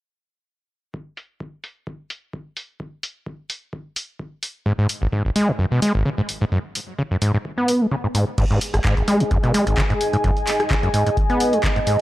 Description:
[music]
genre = acid house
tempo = 129 BPM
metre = 4/4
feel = swing 54% on 16ths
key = G# minor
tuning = A4 = 440 Hz
[part]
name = electronic kick drum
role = drums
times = 0.9-11.7 s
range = none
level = -24 LUFS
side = equal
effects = high-pass filter on kick, high-pass filter on room
[part]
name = punchy analog drum machine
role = drums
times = 1.2-12.0 s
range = crash cymbal, handclaps, hi-hat, rim click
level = -26 LUFS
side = equal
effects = low-pass filter on hats, low-pass filter on cymbals, low-pass filter on snare
[part]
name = overdriven acid bass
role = riff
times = 4.7-12.0 s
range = G#1 to B3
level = -19 LUFS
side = equal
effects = tube saturation, tape echo
[part]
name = dark analog pad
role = sustained chords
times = 9.2-12.0 s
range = G#3 to D#5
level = -27 LUFS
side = right 3 dB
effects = chorus, sidechain pumping
[part]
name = warbly tape-like pad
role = texture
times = 8.4-12.0 s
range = G#4 to G#5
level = -24 LUFS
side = left 2 dB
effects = chorus, built-in reverb, sidechain pumping
[sound]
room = light reverb, digital ambience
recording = dry, gritty hardware recording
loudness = -18 LUFS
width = side -15 dB against mid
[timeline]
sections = 0.9-8.4 A section; 8.4-12.0 B section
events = none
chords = 0.9 N.C.; 8.4 G#5

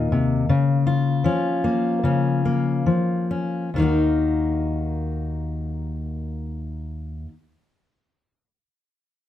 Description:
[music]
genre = folk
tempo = 66-82 BPM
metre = 4/4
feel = straight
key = Eb minor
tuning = A4 = 441 Hz
[part]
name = fingerpicked steel-string acoustic guitar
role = accompaniment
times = 0.0-7.3 s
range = Eb2 to Gb4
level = -20 LUFS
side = left 2 dB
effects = none
[sound]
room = light reverb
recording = none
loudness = -20 LUFS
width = side -11 dB against mid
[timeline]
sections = 0.0-3.7 A section; 3.7-7.3 B section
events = slowing down 0.0-3.7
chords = 0.5 Bbm/Db; 3.7 Ebm

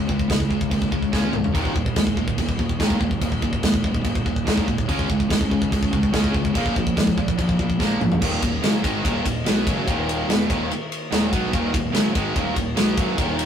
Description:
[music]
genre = heavy metal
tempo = 144 BPM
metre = 4/4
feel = straight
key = Eb minor, Eb phrygian from 8.2 s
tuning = A4 = 440 Hz
[part]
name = distorted electric guitar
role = riff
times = 0.0-13.5 s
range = Eb2 to Db4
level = -26 LUFS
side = right 7 dB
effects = overdrive
[part]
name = high-gain distorted guitar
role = riff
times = 0.0-13.5 s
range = Eb2 to Db4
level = -27 LUFS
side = left 6 dB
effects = distortion
[part]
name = fuzz fingered electric bass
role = bass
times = 0.0-13.5 s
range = Eb1 to Eb2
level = -29 LUFS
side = equal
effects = overdrive
[part]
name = modern studio drum kit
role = drums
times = 0.1-13.5 s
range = crash cymbal, kick drum, ride cymbal, snare drum, toms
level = -22 LUFS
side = equal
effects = none
[part]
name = phased analog pad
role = sustained chords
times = 1.5-13.5 s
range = Eb3 to Eb5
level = -36 LUFS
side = left 1 dB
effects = none
[sound]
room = light reverb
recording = rough rehearsal-room recording, warm saturation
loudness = -19 LUFS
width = side -8 dB against mid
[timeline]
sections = 0.0-8.2 A section; 8.2-13.5 B section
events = drum fill 1.1-1.6, 7.8-8.2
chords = 0.0 Db5; 1.6 Ebm; 4.9 Db; 6.5 Bb7; 8.2 Ebm

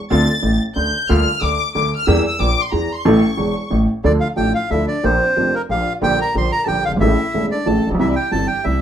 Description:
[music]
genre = tango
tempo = 183 BPM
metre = 3/4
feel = rubato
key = D minor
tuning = A4 = 440 Hz
[part]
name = warm studio violin section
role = second line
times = 0.1-8.8 s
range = Bb3 to A6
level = -24 LUFS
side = left 3 dB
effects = none
[part]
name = warm baby grand piano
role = accompaniment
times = 0.1-8.8 s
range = E1 to A4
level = -18 LUFS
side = right 1 dB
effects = none
[part]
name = upright bass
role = bass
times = 0.1-8.8 s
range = E1 to E2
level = -21 LUFS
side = equal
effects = none
[part]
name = bandoneon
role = melody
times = 4.0-8.8 s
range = Bb4 to C6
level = -20 LUFS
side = right 1 dB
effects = none
[sound]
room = wet small room ambience, RT60 0.5 s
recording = band playing live in one room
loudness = -15 LUFS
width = side -9 dB against mid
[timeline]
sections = 0.0-4.0 A section; 4.0-8.8 B section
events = violin section solo 0.0-4.0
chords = 0.1 Dm7; 1.1 Gm7/D; 2.1 Edim; 3.1 A; 4.0 Dm; 5.0 Bb6; 6.0 Gm/Bb; 7.0 A; 8.0 C

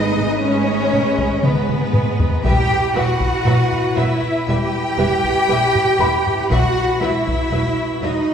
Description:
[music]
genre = cinematic, suspense film score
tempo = 59 BPM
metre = 4/4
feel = straight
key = unclear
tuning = A4 = 440 Hz
[part]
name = rich studio violin section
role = melody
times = 0.0-8.1 s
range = D#5 to E5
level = -31 LUFS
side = left 5 dB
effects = none
[part]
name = rich studio violin section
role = second line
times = 0.0-8.3 s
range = B4 to G5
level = -23 LUFS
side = left 3 dB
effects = none
[part]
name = rich studio viola section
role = accompaniment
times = 0.0-8.1 s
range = F#3 to B4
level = -26 LUFS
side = right 1 dB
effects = none
[part]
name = drifting glass-harmonics texture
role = sustained chords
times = 0.0-8.3 s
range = E4 to B5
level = -29 LUFS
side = left 1 dB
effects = chorus, built-in reverb
[part]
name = rich studio double bass section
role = bass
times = 0.0-8.1 s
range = E1 to G#1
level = -22 LUFS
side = right 1 dB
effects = none
[part]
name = warm studio cello section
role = bass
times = 0.0-8.3 s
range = B3 to G4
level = -20 LUFS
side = right 2 dB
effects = none
[part]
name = taiko ensemble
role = drums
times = 0.2-8.2 s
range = none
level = -22 LUFS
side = left 1 dB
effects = none
[part]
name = felt-muted upright piano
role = texture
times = 6.0-8.3 s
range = B5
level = -26 LUFS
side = left 1 dB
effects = none
[sound]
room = wet scoring stage reverb, RT60 2.0 s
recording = heard from further back in the room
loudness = -15 LUFS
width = side -8 dB against mid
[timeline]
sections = 0.0-8.3 A section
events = drum fill 1.4-2.4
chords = 0.0 G#madd9; 2.4 Emadd9

